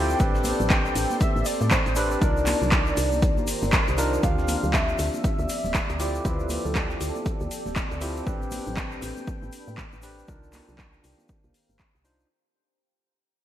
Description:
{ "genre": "deep house", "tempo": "119 BPM", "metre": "4/4", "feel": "swing 60% on 16ths", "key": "unclear", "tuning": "A4 = 440 Hz", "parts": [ { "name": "warm velvety synth lead", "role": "melody", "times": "0.0-7.7 s", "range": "A4 to G5", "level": "-31 LUFS", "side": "right 1 dB", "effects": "chorus, ping-pong delay" }, { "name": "dark analog pad", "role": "sustained chords", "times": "0.0-12.3 s", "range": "Eb3 to B5", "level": "-38 LUFS", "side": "left 1 dB", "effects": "none" }, { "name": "overdriven tine electric piano", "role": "stabs", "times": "0.0-12.3 s", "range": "C4 to C5", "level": "-30 LUFS", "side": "equal", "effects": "sidechain pumping, ping-pong delay" }, { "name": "woody FM bass", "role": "bass", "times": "0.0-12.2 s", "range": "D1 to A2", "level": "-29 LUFS", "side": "equal", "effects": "tube saturation, sidechain pumping" }, { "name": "deep dark ambient pad", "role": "texture", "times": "0.0-12.3 s", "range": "G4 to D6", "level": "-36 LUFS", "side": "equal", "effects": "chorus, built-in reverb, sidechain pumping" }, { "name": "string machine, violins", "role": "texture", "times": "0.0-4.2 s", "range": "C5", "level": "-42 LUFS", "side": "equal", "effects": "none" }, { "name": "egg shaker", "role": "percussion", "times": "0.1-12.3 s", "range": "none", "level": "-40 LUFS", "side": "left 5 dB", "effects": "none" }, { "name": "dusty soul sampler-style drum kit", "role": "drums", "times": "0.2-8.2 s", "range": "hi-hat, snare drum", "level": "-40 LUFS", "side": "right 1 dB", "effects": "none" }, { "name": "electronic kick drum", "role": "drums", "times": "0.2-11.9 s", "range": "none", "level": "-25 LUFS", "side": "equal", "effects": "overdrive, studio reverb" }, { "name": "congas", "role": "percussion", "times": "0.4-11.8 s", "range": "none", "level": "-36 LUFS", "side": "right 2 dB", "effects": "none" }, { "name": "deep house drum kit", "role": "drums", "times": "0.5-12.2 s", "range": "handclaps, hi-hat", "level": "-30 LUFS", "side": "equal", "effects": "overdrive, studio reverb, gated reverb" } ], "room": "light reverb, digital ambience", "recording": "bright 1980s-style digital production, vinyl crackle", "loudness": "-22 LUFS", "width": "side -12 dB against mid", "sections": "0.0-4.2 A section; 4.2-12.3 B section", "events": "drop 0.0-4.2; fade-out 4.2-12.3", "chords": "0.2 Am11; 2.2 Cm11; 4.2 Dm11; 8.3 Am11; 10.3 Cm11" }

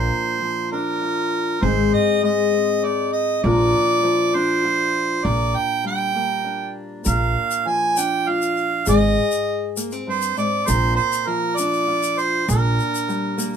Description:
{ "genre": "acoustic folk duo or small band", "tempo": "99 BPM", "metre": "3/4", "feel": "straight", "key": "unclear", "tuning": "A4 = 438 Hz", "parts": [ { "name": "warm harmonica", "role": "second line", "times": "0.0-13.6 s", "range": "Bb4 to Ab5", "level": "-21 LUFS", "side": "right 3 dB", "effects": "none" }, { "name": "fingerpicked steel-string acoustic guitar", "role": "accompaniment", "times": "0.0-13.6 s", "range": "G2 to Bb4", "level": "-22 LUFS", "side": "left 3 dB", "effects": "none" }, { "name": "upright bass", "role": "bass", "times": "0.0-12.8 s", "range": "Ab1 to Bb1", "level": "-20 LUFS", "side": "right 1 dB", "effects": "none" }, { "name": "tube shaker", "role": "percussion", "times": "7.1-13.6 s", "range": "none", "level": "-29 LUFS", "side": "left 5 dB", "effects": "none" } ], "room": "light reverb", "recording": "minimal, uncompressed stereo recording", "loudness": "-18 LUFS", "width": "side -8 dB against mid", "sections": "0.0-13.6 A section", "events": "harmonica solo 0.0-13.6", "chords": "0.0 Bbadd9; 1.6 Ab; 3.4 Bbadd9; 5.2 Gm/Bb; 7.1 Bb; 8.9 Ab; 10.7 Bb; 12.5 Gm/Bb" }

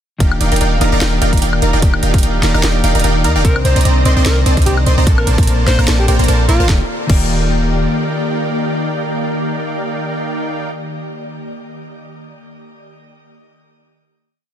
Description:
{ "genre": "future bass", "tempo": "148 BPM", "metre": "4/4", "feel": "swing 55% on 16ths, half-time", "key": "Eb lydian", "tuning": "A4 = 439 Hz", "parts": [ { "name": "mellow electric guitar", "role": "accompaniment", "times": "0.2-11.4 s", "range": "Bb2 to D5", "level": "-21 LUFS", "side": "left 2 dB", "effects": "sidechain pumping, digital delay" }, { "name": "ethereal airy pad", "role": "sustained chords", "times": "0.9-10.7 s", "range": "C3 to D5", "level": "-25 LUFS", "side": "left 1 dB", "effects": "ensemble chorus, built-in reverb, sidechain pumping" }, { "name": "supersaw stab", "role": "riff", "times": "0.2-10.7 s", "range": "Bb3 to C6", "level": "-19 LUFS", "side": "right 1 dB", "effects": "sidechain pumping, digital delay" }, { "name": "warm 808-style bass", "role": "bass", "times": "0.2-7.9 s", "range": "Eb1 to Eb2", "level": "-15 LUFS", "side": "equal", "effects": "sidechain pumping" }, { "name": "electronic kick drum", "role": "drums", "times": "0.2-7.2 s", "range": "none", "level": "-13 LUFS", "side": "equal", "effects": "none" }, { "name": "trap drum kit", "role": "drums", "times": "0.2-7.2 s", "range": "crash cymbal, hi-hat, snare drum, woodblock", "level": "-22 LUFS", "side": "equal", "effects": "none" }, { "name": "breathy alto saxophone", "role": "melody", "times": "3.4-6.7 s", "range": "F4 to C5", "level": "-25 LUFS", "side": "equal", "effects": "none" } ], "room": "digital ambience", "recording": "dense, heavily limited modern master", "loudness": "-12 LUFS", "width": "side -10 dB against mid", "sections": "0.2-6.7 drop; 6.7-9.9 final chord", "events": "drop 0.2-6.7", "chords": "0.2 Ebmaj7; 3.4 Cm9; 5.1 Bbmaj7; 6.7 Ebmaj7" }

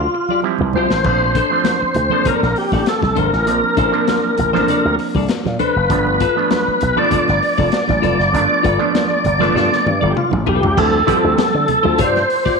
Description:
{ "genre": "funk", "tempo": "99 BPM", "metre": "4/4", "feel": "straight", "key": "unclear", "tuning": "A4 = 440 Hz", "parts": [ { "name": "tonewheel organ", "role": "melody", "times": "0.0-12.6 s", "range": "F4 to D5", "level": "-17 LUFS", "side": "equal", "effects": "overdrive, chorus vibrato, slow rotary speaker, slapback echo" }, { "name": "slap bass with an envelope filter", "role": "bass", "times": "0.0-12.2 s", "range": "F1 to D3", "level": "-19 LUFS", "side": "equal", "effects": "none" }, { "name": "clean electric guitar", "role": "accompaniment", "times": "0.1-12.6 s", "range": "D4 to D5", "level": "-24 LUFS", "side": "left 11 dB", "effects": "none" }, { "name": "congas", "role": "percussion", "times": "0.3-12.3 s", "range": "none", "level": "-26 LUFS", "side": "right 10 dB", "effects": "none" }, { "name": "auto-wah clav", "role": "stabs", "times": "0.4-12.0 s", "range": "F3 to C5", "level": "-22 LUFS", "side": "right 10 dB", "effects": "overdrive" }, { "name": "crunchy breakbeat drum kit", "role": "drums", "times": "0.9-12.6 s", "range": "crash cymbal, hi-hat, kick drum, snare drum, toms", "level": "-23 LUFS", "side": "left 4 dB", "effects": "none" } ], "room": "wet echo chamber reverb, RT60 1.9 s, small room ambience", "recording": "1960s-style stereo with parts hard left and right", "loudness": "-13 LUFS", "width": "side -4 dB against mid", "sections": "0.0-1.0 A section; 1.0-10.8 B section; 10.8-12.6 A section", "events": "drum fill 0.0-1.0, 9.6-10.8; clav fill 0.1-1.0", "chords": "0.0 Dm11 (rootless); 1.0 Bbmaj9; 5.9 G9; 10.8 Dm11" }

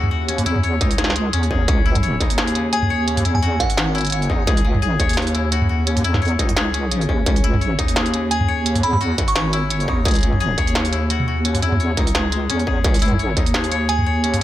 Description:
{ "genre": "half-time drum and bass", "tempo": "172 BPM", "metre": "4/4", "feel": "swing 56% on 16ths, half-time", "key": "C# minor", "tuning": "A4 = 440 Hz", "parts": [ { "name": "koto", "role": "arpeggios", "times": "0.0-14.4 s", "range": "C#3 to C#5", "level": "-24 LUFS", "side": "left 5 dB", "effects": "dub echo" }, { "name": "deep soft wobble bass", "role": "bass", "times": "0.0-14.4 s", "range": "G#1 to E2", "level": "-20 LUFS", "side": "equal", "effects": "chorus, tube saturation" }, { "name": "industrial drum kit", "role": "drums", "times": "0.0-14.4 s", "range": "hi-hat, snare drum, toms", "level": "-22 LUFS", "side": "right 1 dB", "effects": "none" }, { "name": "electronic kick drum", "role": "drums", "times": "0.8-13.4 s", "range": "none", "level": "-20 LUFS", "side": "equal", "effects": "distortion" }, { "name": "glassy synth bell", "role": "melody", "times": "2.7-3.9, 8.3-9.4, 13.9-14.1 s", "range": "F#5 to C#6", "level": "-25 LUFS", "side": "right 2 dB", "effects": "chorus, vintage 12-bit sampler grit, digital delay" } ], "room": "digital ambience", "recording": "none", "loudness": "-16 LUFS", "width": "side -13 dB against mid", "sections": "0.0-14.4 A section", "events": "none", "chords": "0.0 C#m" }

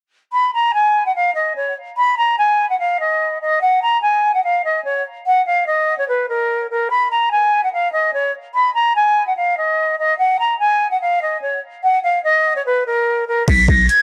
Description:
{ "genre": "hip hop, trap", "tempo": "146 BPM", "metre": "4/4", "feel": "half-time", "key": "unclear", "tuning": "A4 = 444 Hz", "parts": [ { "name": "concert flute", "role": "melody", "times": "0.3-14.0 s", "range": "A#4 to B6", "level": "-17 LUFS", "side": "equal", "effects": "none" }, { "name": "growling 808-style bass", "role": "bass", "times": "13.5-13.9 s", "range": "B1", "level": "-18 LUFS", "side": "equal", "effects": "none" }, { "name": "trap drum kit", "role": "drums", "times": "13.5-14.0 s", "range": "crash cymbal, hi-hat, kick drum", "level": "-20 LUFS", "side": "equal", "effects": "overdrive" } ], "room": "little or no reverb", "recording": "dry, gritty hardware recording, cassette tape", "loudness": "-17 LUFS", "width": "mono", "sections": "0.3-13.5 A section", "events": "none", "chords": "none" }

